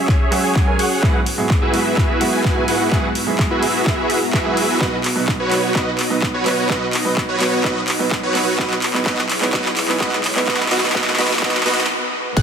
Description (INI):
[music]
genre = EDM, festival progressive house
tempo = 127 BPM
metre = 4/4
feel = straight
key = unclear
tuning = A4 = 440 Hz
[part]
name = supersaw pad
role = sustained chords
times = 0.0-12.4 s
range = G#2 to A#5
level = -26 LUFS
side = equal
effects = sidechain pumping
[part]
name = supersaw chords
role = riff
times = 0.0-12.4 s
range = E4 to G#5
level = -20 LUFS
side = right 1 dB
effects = analog chorus, vintage 12-bit sampler grit, sidechain pumping, low-pass filter, tape echo
[part]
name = big-room dance drum kit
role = drums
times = 0.1-12.4 s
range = crash cymbal, handclaps, hi-hat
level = -21 LUFS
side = equal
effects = small room ambience
[part]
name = electronic kick drum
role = drums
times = 0.1-12.4 s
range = none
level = -20 LUFS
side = equal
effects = small room ambience
[part]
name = clear concert grand piano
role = accompaniment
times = 0.3-11.8 s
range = G#2 to B4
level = -23 LUFS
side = right 3 dB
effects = sidechain pumping, tape echo
[part]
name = riser and downlifter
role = sound effects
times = 8.0-12.4 s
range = none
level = -34 LUFS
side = equal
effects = none
[part]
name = plucky unison lead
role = arpeggios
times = 12.4 s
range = F#6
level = -24 LUFS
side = left 5 dB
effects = sidechain pumping
[part]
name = wide detuned saw bass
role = bass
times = 12.4 s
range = F#1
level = -25 LUFS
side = equal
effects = chorus, tube saturation, sidechain pumping
[sound]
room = moderate huge ambient reverb, RT60 5.0 s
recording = dense, heavily limited modern master, high-pass filter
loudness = -15 LUFS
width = side -7 dB against mid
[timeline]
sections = 0.0-12.4 A section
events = build-up 0.0-12.4; drum fill 0.0-11.9; filter sweep 0.0-12.4; stop 11.9-12.4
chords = 0.0 F#sus2; 1.0 Eadd9/G#; 4.8 B; 8.6 C#m7